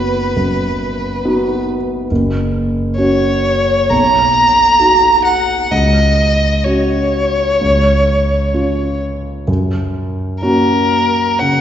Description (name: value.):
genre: classical, romantic duo for violin and grand piano.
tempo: 59-70 BPM.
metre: 4/4.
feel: rubato.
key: F# major.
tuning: A4 = 443 Hz.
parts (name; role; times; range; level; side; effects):
clear violin; melody; 0.0-11.6 s; A#4 to A#5; -14 LUFS; equal; none.
dark concert grand piano; accompaniment; 0.0-11.6 s; F#1 to F#4; -15 LUFS; equal; none.
room: wet recital hall reverb, RT60 1.8 s.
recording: heard from further back in the room, nothing above 7.6 kHz.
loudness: -12 LUFS.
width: side -10 dB against mid.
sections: 0.0-11.6 A section.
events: none.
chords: 0.0 B/F#; 2.1 F#5; 3.9 Bmaj7; 5.7 F#5/C#; 7.6 C#; 9.5 F#.